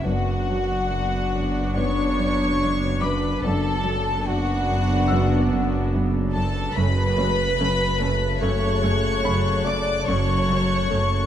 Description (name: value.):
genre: cinematic, suspense film score.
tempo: 72 BPM.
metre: 4/4.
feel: straight.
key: unclear.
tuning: A4 = 440 Hz.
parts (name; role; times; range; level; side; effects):
warm studio violin section; melody; 0.0-11.3 s; F#5 to D6; -28 LUFS; left 3 dB; none.
rich studio violin section; second line; 0.0-11.3 s; F#4 to D5; -27 LUFS; left 1 dB; none.
dark French horn section; sustained chords; 0.0-11.3 s; C#3 to D4; -30 LUFS; left 4 dB; none.
warm studio cello section; bass; 0.0-11.3 s; F#2; -27 LUFS; equal; none.
clear concert grand piano; texture; 0.0-11.3 s; B5 to E6; -37 LUFS; left 4 dB; none.
rich studio viola section; accompaniment; 0.1-11.0 s; C#3 to D4; -28 LUFS; right 1 dB; none.
warm studio cello section; riff; 0.1-11.2 s; F#2 to F#3; -29 LUFS; right 1 dB; none.
warm studio double bass section; bass; 0.1-11.3 s; F#1; -29 LUFS; right 3 dB; none.
punchy sub bass; drone; 0.1-11.3 s; F#1; -31 LUFS; equal; none.
rich studio violin section; texture; 6.7-11.3 s; A5 to F#6; -37 LUFS; left 4 dB; none.
room: moderate scoring stage reverb, RT60 1.6 s.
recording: dark, warm production.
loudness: -20 LUFS.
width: side -10 dB against mid.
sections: 0.0-11.3 A section.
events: none.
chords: 0.0 D6/F#; 6.7 F#m.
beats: | 0.05 0.90 1.76 2.60 | 3.43 4.26 5.09 5.92 | 6.74 7.57 8.40 9.24 | 10.07 10.90.